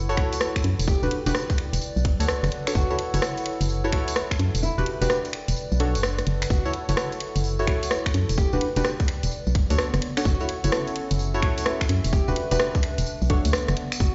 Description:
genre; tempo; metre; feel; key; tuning
UK garage, two-step garage; 128 BPM; 4/4; swing 65% on 16ths; F# phrygian; A4 = 441 Hz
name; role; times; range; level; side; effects
deep mellow chord stab; stabs; 0.0-13.4 s; D4 to C#5; -31 LUFS; equal; analog chorus, delay
organ-like FM bass; bass; 0.0-14.1 s; E1 to F#2; -26 LUFS; equal; sidechain pumping
warbly tape-like pad; texture; 0.0-14.1 s; B3 to G5; -37 LUFS; equal; chorus, built-in reverb, sidechain pumping
garage drum kit; drums; 0.1-14.1 s; finger snaps, hi-hat, rim click, tambourine; -31 LUFS; equal; overdrive, studio reverb
electronic kick drum; drums; 0.2-14.1 s; none; -26 LUFS; equal; overdrive, studio reverb
nylon-string guitar; melody; 0.9-14.1 s; E4 to G4; -37 LUFS; equal; dub echo
room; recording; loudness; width
light reverb; played on a big sound system in a bare room, stone room reverb, nothing above 7.6 kHz; -24 LUFS; mono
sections
0.0-14.1 A section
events
kick drops out 4.6-6.5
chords
0.0 F#m7; 0.9 Em7; 1.8 Bm7; 2.8 F#m7; 4.6 Em7; 5.6 Bm7; 6.5 F#m7; 8.4 Em7; 9.3 Bm7; 10.3 F#m7; 12.1 Em7; 13.1 Bm7

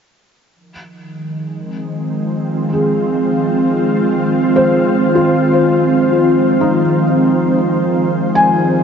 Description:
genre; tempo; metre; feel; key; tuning
ambient; 62 BPM; 4/4; straight; F minor; A4 = 440 Hz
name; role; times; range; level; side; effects
ethereal airy pad; sustained chords; 1.2-8.8 s; Eb3 to C5; -14 LUFS; equal; ensemble chorus, built-in reverb
analog drone; drone; 0.8-8.8 s; F3; -24 LUFS; right 1 dB; chorus
felt-muted upright piano; arpeggios; 2.7-8.8 s; Ab3 to Ab5; -17 LUFS; left 1 dB; ping-pong delay
room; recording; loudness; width
wet huge ambient reverb, RT60 7.0 s; nothing above 7.6 kHz; -12 LUFS; side -7 dB against mid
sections
0.6-8.8 A section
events
filter sweep on ambient pad 0.6-8.8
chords
0.6 Fm7

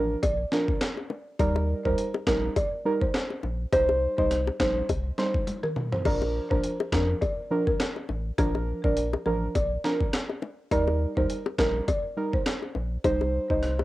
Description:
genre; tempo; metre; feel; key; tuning
dancehall; 103 BPM; 4/4; swing 56% on 16ths; Bb major; A4 = 440 Hz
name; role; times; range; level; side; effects
folk marimba with medium mallets; melody; 0.0-13.7 s; Bb4 to Eb5; -32 LUFS; equal; cassette tape, tape echo, plate reverb
deep mellow chord stab; accompaniment; 0.0-13.7 s; F3 to C5; -27 LUFS; right 2 dB; chorus, cassette tape, plate reverb
warm sub bass; bass; 0.0-13.8 s; A1 to F2; -29 LUFS; equal; none
jungle sampler-style drum kit; drums; 0.2-13.8 s; crash cymbal, hi-hat, kick drum, rim click, snare drum, toms; -29 LUFS; equal; overdrive
bongos; percussion; 0.2-13.8 s; none; -32 LUFS; left 5 dB; none
room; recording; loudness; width
light reverb; home recording on cassette; -24 LUFS; side -16 dB against mid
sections
0.0-13.8 A section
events
drum fill 5.5-6.1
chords
0.0 Bb; 1.4 Eb; 3.7 Cm; 6.1 Bb; 10.7 Eb; 13.0 Cm

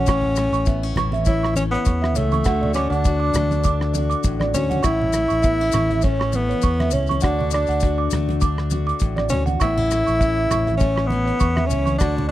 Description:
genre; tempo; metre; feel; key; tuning
highlife guitar band; 101 BPM; 4/4; swing 54% on 16ths; A major; A4 = 440 Hz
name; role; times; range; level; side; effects
warm tenor saxophone; melody; 0.0-12.3 s; A3 to E4; -22 LUFS; equal; tape echo
picked steel-string acoustic guitar; accompaniment; 0.0-12.3 s; E2 to F#4; -28 LUFS; left 7 dB; none
marimba with medium mallets; arpeggios; 0.0-12.3 s; C#5 to D6; -27 LUFS; right 7 dB; tape echo
fingered electric bass; bass; 0.0-12.3 s; A1 to E2; -23 LUFS; equal; none
damped 70s drum kit; drums; 0.1-12.2 s; hi-hat, kick drum, rim click; -22 LUFS; equal; none
maracas; percussion; 0.1-12.2 s; none; -34 LUFS; left 16 dB; none
congas; percussion; 0.2-12.3 s; none; -28 LUFS; right 2 dB; none
room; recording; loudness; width
small room ambience; dry, close 1970s-style studio recording; -18 LUFS; side -14 dB against mid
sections
0.0-4.8 A section; 4.8-12.3 A section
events
none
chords
0.1 A; 2.5 D; 4.8 A; 7.2 D; 9.6 A

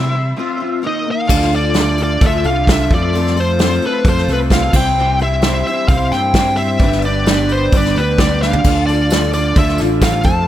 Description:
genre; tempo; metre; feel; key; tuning
folk rock and heartland rock; 131 BPM; 4/4; straight; D dorian; A4 = 440 Hz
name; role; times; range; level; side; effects
smooth overdriven lead guitar; melody; 0.0-10.5 s; B4 to A5; -18 LUFS; left 1 dB; tape echo
picked twelve-string acoustic guitar; accompaniment; 0.0-10.5 s; G2 to C5; -25 LUFS; left 7 dB; ensemble chorus
electric guitar through a small old amp; riff; 0.0-10.5 s; C3 to C5; -20 LUFS; right 1 dB; analog chorus
fingered electric bass; bass; 0.0-10.5 s; G1 to C3; -18 LUFS; equal; none
warm grand piano; accompaniment; 1.3-10.5 s; C4 to F5; -30 LUFS; right 4 dB; none
mellow tonewheel organ; sustained chords; 1.3-10.5 s; F4 to D6; -31 LUFS; equal; none
soft brush drum kit; drums; 1.3-10.4 s; crash cymbal, hi-hat, kick drum, snare drum, toms; -16 LUFS; equal; none
tambourine; percussion; 8.7-10.4 s; none; -34 LUFS; right 7 dB; none
room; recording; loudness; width
light reverb, studio ambience; none; -12 LUFS; side -12 dB against mid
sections
0.0-1.3 A section; 1.3-10.5 B section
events
drum fill 8.4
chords
0.4 F5; 0.8 Eb5; 1.3 Dm; 2.9 F; 4.7 C; 6.8 G; 8.6 Dm

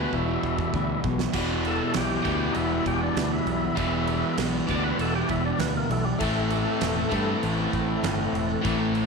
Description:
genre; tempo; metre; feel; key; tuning
classic rock; 99 BPM; 4/4; straight; E minor; A4 = 440 Hz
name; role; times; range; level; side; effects
overdriven tonewheel organ; melody; 0.0-7.4 s; G3 to D5; -30 LUFS; equal; slow rotary speaker
picked steel-string acoustic guitar; accompaniment; 0.0-9.1 s; E2 to F#4; -36 LUFS; left 12 dB; none
tonewheel organ; sustained chords; 0.0-9.1 s; G3 to A4; -37 LUFS; equal; none
crunchy overdriven guitar; riff; 0.0-9.1 s; E2 to A3; -26 LUFS; equal; none
growling fingered electric bass; bass; 0.0-9.1 s; E1 to G2; -30 LUFS; equal; overdrive
huge arena drum kit; drums; 0.1-9.1 s; crash cymbal, kick drum, snare drum; -33 LUFS; right 5 dB; none
room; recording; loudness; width
light reverb, small room ambience; 1960s-style stereo; -23 LUFS; side -4 dB against mid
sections
0.0-1.3 A section; 1.3-9.1 B section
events
drum fill 0.1-1.3; tonewheel organ solo 1.3-9.1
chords
0.0 Emadd9; 1.3 Em; 6.2 Am

